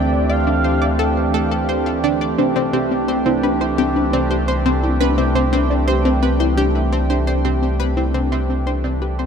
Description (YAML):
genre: ambient, sequencer-driven space music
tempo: 86 BPM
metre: 4/4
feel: straight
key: unclear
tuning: A4 = 437 Hz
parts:
  - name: expressive portamento lead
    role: melody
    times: 0.0-1.3 s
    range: D5 to F5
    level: -27 LUFS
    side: equal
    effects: analog chorus, ping-pong delay
  - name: sweeping resonant pad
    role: sustained chords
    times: 0.0-9.3 s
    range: E3 to G4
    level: -20 LUFS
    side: right 2 dB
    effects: chorus
  - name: warm sub bass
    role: bass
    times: 0.0-9.3 s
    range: C2 to D2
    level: -21 LUFS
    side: equal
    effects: none
  - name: pulsing gated texture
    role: texture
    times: 0.0-9.3 s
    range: G5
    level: -36 LUFS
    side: right 2 dB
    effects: none
  - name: analog pluck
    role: riff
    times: 0.3-9.3 s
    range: C4 to F5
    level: -22 LUFS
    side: right 1 dB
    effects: chorus, ping-pong delay
  - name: warbly dusty pluck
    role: arpeggios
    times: 2.4-9.3 s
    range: C4 to E5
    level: -22 LUFS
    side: moving between left 7 dB and left 1 dB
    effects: chorus, auto-pan, ping-pong delay
room: wet cathedral reverb, RT60 5.2 s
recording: in a vast, echoing space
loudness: -16 LUFS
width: side -7 dB against mid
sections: 0.0-9.3 A section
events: fade-out 6.1-9.3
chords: 0.0 Dm7; 2.4 Cadd9